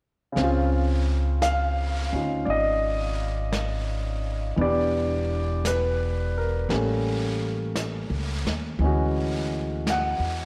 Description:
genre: jazz ballad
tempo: 57 BPM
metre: 4/4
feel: swing 68% on 8ths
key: unclear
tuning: A4 = 440 Hz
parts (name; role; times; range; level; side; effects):
- warm grand piano; accompaniment; 0.3-10.5 s; Db3 to F#5; -28 LUFS; equal; none
- upright bass; bass; 0.4-10.5 s; E1 to E2; -29 LUFS; equal; none
- jazz brush drum kit; drums; 0.4-10.5 s; brushed snare drum, hi-hat, snare drum; -37 LUFS; equal; none
room: moderate echo chamber reverb, RT60 2.1 s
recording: none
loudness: -26 LUFS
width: mono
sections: 0.4-10.5 A section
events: none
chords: 0.4 Dbmaj9; 4.6 Em7; 6.7 A7b9; 8.8 Dmaj9#11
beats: | 0.37 1.42 2.48 3.53 | 4.59 5.64 6.69 7.75 | 8.80 9.86

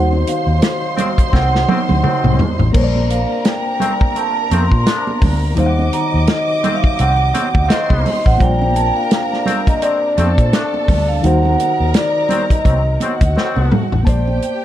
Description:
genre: lush 1970s-style soul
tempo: 85 BPM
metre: 4/4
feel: swing 58% on 16ths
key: unclear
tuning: A4 = 442 Hz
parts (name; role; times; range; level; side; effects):
- vibraphone with medium mallets; melody; 0.0-14.6 s; C5 to C6; -19 LUFS; right 1 dB; none
- warm studio violin section; second line; 0.0-14.6 s; Gb4 to D6; -25 LUFS; left 1 dB; none
- mellow reed electric piano; accompaniment; 0.0-14.6 s; Eb3 to A5; -23 LUFS; left 3 dB; fast tremolo
- warm French horn section; sustained chords; 0.0-14.0 s; Bb2 to Eb4; -29 LUFS; equal; none
- vintage muted fingered electric bass; bass; 0.0-14.4 s; A1 to Bb2; -16 LUFS; equal; none
- congas; percussion; 0.1-14.4 s; none; -24 LUFS; right 5 dB; none
- warm soul drum kit; drums; 0.3-14.6 s; crash cymbal, hi-hat, kick drum, snare drum, toms; -16 LUFS; equal; none
- muted trombone section; stabs; 1.0-13.9 s; Eb3 to D4; -25 LUFS; left 4 dB; slapback echo
room: light reverb, small room ambience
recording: dark, warm production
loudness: -13 LUFS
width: side -12 dB against mid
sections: 0.0-14.1 A section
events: drum fill 1.3-2.7, 13.4-14.1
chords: 0.0 Ebm6; 2.7 Bbmaj9; 5.6 Ebm6; 8.4 Bbmaj9; 11.2 Ebm6; 14.1 Bbmaj9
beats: 0.62 1.33 2.04 | 2.74 3.45 4.16 4.87 | 5.58 6.28 6.99 7.70 | 8.41 9.11 9.82 10.53 | 11.24 11.94 12.65 13.36 | 14.07

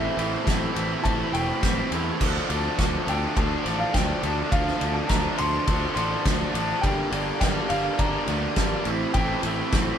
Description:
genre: indie rock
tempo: 104 BPM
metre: 4/4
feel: straight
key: D minor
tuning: A4 = 440 Hz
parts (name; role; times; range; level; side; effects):
- bright upright piano; melody; 0.0-10.0 s; E5 to C6; -30 LUFS; equal; none
- raw garage guitar; riff; 0.0-10.0 s; G2 to E4; -26 LUFS; equal; overdrive
- fuzz fingered electric bass; bass; 0.0-9.9 s; E1 to E2; -30 LUFS; equal; overdrive
- loose indie drum kit; drums; 0.2-9.9 s; crash cymbal, kick drum, ride cymbal, snare drum; -27 LUFS; equal; none
room: moderate stone room reverb, RT60 1.0 s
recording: band playing live in one room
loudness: -22 LUFS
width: side -8 dB against mid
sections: 0.0-10.0 A section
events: none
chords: 0.0 Am7; 2.2 Dm7; 6.8 Gm; 8.9 Am7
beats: 0.47 1.05 1.62 | 2.21 2.78 3.36 3.94 | 4.52 5.10 5.68 6.26 | 6.84 7.41 7.99 8.57 | 9.15 9.73

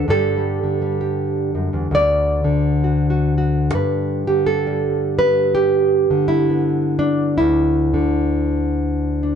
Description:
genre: folk, solo fingerstyle acoustic guitar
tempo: 66 BPM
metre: 4/4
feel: swing 59% on 8ths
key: unclear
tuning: A4 = 439 Hz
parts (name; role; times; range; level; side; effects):
- nylon-string guitar; solo; 0.0-9.4 s; D2 to D5; -16 LUFS; equal; none
room: moderate studio reverb, RT60 0.6 s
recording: dark, warm production, nothing above 10.9 kHz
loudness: -16 LUFS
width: side -8 dB against mid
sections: 0.0-3.7 A section; 3.7-9.4 B section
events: none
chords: 0.1 Gsus2; 1.9 D; 3.7 G; 7.4 Dsus2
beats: | 0.09 1.00 1.92 2.83 | 3.75 4.66 5.57 6.49 | 7.40 8.31 9.22

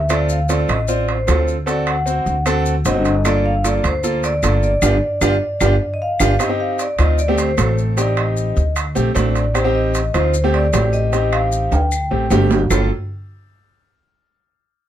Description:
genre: Afro-Cuban jazz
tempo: 152 BPM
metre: 4/4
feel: straight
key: G minor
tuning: A4 = 440 Hz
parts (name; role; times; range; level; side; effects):
- vibraphone with medium mallets; melody; 0.0-12.3 s; C5 to G5; -22 LUFS; left 1 dB; plate reverb
- upright bass; bass; 0.0-12.9 s; G1 to D2; -18 LUFS; equal; none
- bright grand piano; accompaniment; 0.1-12.9 s; A3 to C5; -21 LUFS; right 1 dB; none
- claves; percussion; 0.1-12.8 s; none; -29 LUFS; left 1 dB; none
- maracas; percussion; 0.1-12.8 s; none; -29 LUFS; left 6 dB; none
- timbales; percussion; 0.1-12.8 s; none; -24 LUFS; right 6 dB; none
room: light reverb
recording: close, detailed microphones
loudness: -15 LUFS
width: side -11 dB against mid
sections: 0.0-6.4 A section; 6.4-12.7 B section; 12.7-14.3 C section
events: band accent 4.8-6.4; drum fill 5.4-6.4, 11.7-12.7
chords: 0.1 Dm7; 1.7 D7; 3.2 Gm9; 6.4 Ebmaj13; 7.2 D7sus4; 8.0 Am7b5; 8.8 D7sus4; 9.6 Am7b5; 10.3 D7sus4; 11.1 Am7b5; 11.9 D7sus4; 12.7 Gm9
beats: | 0.10 0.49 0.89 1.28 | 1.67 2.07 2.46 2.86 | 3.25 3.64 4.04 4.43 | 4.82 5.22 5.61 6.01 | 6.40 6.79 7.19 7.58 | 7.97 8.37 8.76 9.16 | 9.55 9.95 10.34 10.73 | 11.13 11.52 11.92 12.31 | 12.71

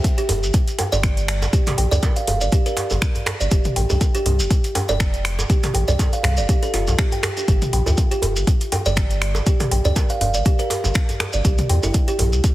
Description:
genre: afro house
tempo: 121 BPM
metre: 4/4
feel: swing 55% on 16ths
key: G minor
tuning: A4 = 441 Hz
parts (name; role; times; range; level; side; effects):
- kalimba; arpeggios; 0.0-12.2 s; E4 to G5; -24 LUFS; right 2 dB; sidechain pumping, dub echo
- deep house drum kit; drums; 0.0-12.5 s; finger snaps, hi-hat, toms; -26 LUFS; equal; none
- electronic kick drum; drums; 0.0-12.5 s; none; -18 LUFS; equal; none
- djembe; percussion; 0.0-12.3 s; none; -26 LUFS; right 1 dB; none
- shekere; percussion; 0.0-12.5 s; none; -30 LUFS; right 1 dB; none
- warm sub bass; bass; 0.3-12.4 s; F1 to E2; -21 LUFS; equal; sidechain pumping
room: light reverb, small room ambience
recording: heavily compressed radio sound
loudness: -17 LUFS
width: side -16 dB against mid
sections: 0.0-12.5 A section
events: none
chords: 0.0 G7(no3); 3.5 F; 7.5 G7(no3); 11.4 C7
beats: 0.04 0.54 1.03 | 1.53 2.03 2.52 3.02 | 3.52 4.01 4.51 5.00 | 5.50 5.99 6.49 6.99 | 7.48 7.98 8.47 8.97 | 9.46 9.96 10.46 10.95 | 11.45 11.94 12.44

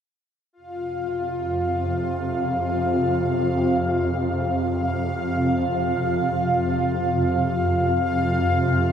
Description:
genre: dark ambient drone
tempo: free time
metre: none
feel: none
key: unclear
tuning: A4 = 443 Hz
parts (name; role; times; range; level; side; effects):
- bubbling stepped-filter texture; texture; 0.5-8.9 s; F4 to F5; -23 LUFS; equal; chorus, built-in reverb
- swarming drone; drone; 1.0-8.9 s; F2 to C3; -23 LUFS; equal; built-in reverb
room: wet huge ambient reverb, RT60 8.0 s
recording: dreamy mix soaked in reverb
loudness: -20 LUFS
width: side -8 dB against mid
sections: 0.5-8.9 A section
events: none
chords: 0.5 F5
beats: free time

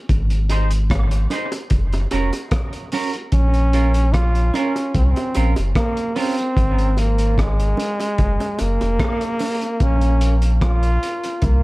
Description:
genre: dub reggae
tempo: 74 BPM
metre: 4/4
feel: straight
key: Bb minor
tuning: A4 = 437 Hz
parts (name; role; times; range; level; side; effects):
- warm sub bass; bass; 0.1-11.6 s; F1 to C2; -17 LUFS; equal; none
- crunchy breakbeat drum kit; drums; 0.1-11.6 s; hi-hat, kick drum, rim click; -23 LUFS; equal; none
- clean electric guitar; accompaniment; 0.5-6.3 s; Db4 to C5; -27 LUFS; right 4 dB; dub echo
- bongos; percussion; 0.5-9.6 s; none; -32 LUFS; right 2 dB; dub echo
- bright trombone; melody; 3.3-11.6 s; Ab3 to F4; -22 LUFS; equal; dub echo
room: light reverb, small room ambience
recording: dark, warm production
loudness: -16 LUFS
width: side -21 dB against mid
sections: 0.0-11.6 A section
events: break 0.0-3.3; part muted 9.8-11.6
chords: 0.1 Ab; 1.7 Gb; 3.3 Bbm; 6.6 Abadd9; 8.2 Gb; 9.8 Bb5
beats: | 0.10 0.90 1.71 2.52 | 3.33 4.14 4.95 5.76 | 6.57 7.38 8.19 9.00 | 9.80 10.61 11.42

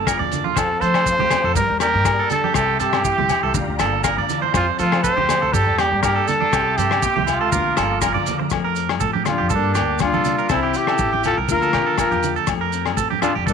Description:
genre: highlife guitar band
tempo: 121 BPM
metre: 4/4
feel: swing 53% on 16ths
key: F major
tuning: A4 = 441 Hz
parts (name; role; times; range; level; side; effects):
- mellow electric guitar; accompaniment; 0.0-13.5 s; F2 to A4; -29 LUFS; left 14 dB; none
- electric guitar at the edge of break-up; arpeggios; 0.0-13.5 s; D4 to D5; -23 LUFS; right 12 dB; tape echo
- upright bass; bass; 0.0-13.5 s; G1 to F3; -26 LUFS; equal; none
- cloth-damped thuddy drum kit; drums; 0.1-13.5 s; hi-hat, kick drum, rim click; -26 LUFS; left 6 dB; none
- agogo bells; percussion; 0.1-13.4 s; none; -28 LUFS; left 14 dB; none
- maracas; percussion; 0.1-13.5 s; none; -32 LUFS; right 16 dB; none
- congas; percussion; 0.2-13.4 s; none; -29 LUFS; right 10 dB; none
- breathy trumpet; melody; 0.6-13.5 s; D4 to C5; -21 LUFS; equal; none
- percussive tonewheel organ; sustained chords; 0.6-8.5 s; C5 to D6; -30 LUFS; equal; slow rotary speaker, chorus vibrato
- clear alto saxophone; second line; 9.3-13.5 s; Bb3 to F4; -25 LUFS; left 11 dB; none
room: light reverb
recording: 1960s-style stereo with parts hard left and right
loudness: -16 LUFS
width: side -6 dB against mid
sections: 0.0-8.5 A section; 8.5-13.5 B section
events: none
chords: 0.0 Bb; 0.6 F; 1.6 Gm; 2.6 C; 3.6 Bb; 4.5 F; 5.5 Gm; 6.5 C; 7.5 Bb; 8.5 F; 9.5 Gm; 10.5 C; 11.5 Bb/D; 12.5 F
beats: 0.08 | 0.58 1.07 1.57 2.07 | 2.56 3.06 3.56 4.05 | 4.55 5.05 5.54 6.04 | 6.54 7.03 7.53 8.03 | 8.52 9.02 9.52 10.01 | 10.51 11.01 11.50 12.00 | 12.49 12.99 13.48

